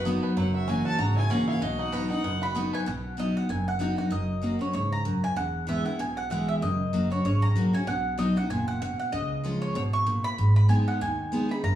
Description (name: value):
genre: bluegrass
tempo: 192 BPM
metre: 4/4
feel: swing 56% on 8ths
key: B major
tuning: A4 = 440 Hz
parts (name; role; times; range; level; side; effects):
- picked steel-string acoustic guitar; accompaniment; 0.0-11.8 s; E2 to G#4; -27 LUFS; equal; none
- bluegrass banjo; arpeggios; 0.0-2.9 s; F#3 to B4; -34 LUFS; right 3 dB; none
- upright bass; bass; 0.0-11.8 s; E1 to D#2; -28 LUFS; right 1 dB; none
- rich fiddle; second line; 0.4-2.5 s; D#5 to A#5; -33 LUFS; left 2 dB; none
- mandolin; melody; 2.4-11.8 s; C#5 to C#6; -31 LUFS; right 1 dB; none
room: wet large studio reverb, RT60 1.3 s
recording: band playing live in one room, small room ambience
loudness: -24 LUFS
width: side -12 dB against mid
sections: 0.0-2.9 A section; 2.9-11.8 B section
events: fiddle solo 0.0-2.9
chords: 0.4 F#7; 1.6 B; 4.1 F#; 5.4 E; 6.6 F#; 7.9 B; 9.1 C#; 10.4 G#m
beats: 0.06 | 0.37 0.68 0.99 1.30 | 1.61 1.93 2.24 2.55 | 2.86 3.18 3.49 3.80 | 4.11 4.43 4.74 5.05 | 5.37 5.68 5.99 6.31 | 6.62 6.93 7.25 7.56 | 7.87 8.19 8.50 8.81 | 9.13 9.44 9.76 10.07 | 10.38 10.70 11.01 11.32 | 11.64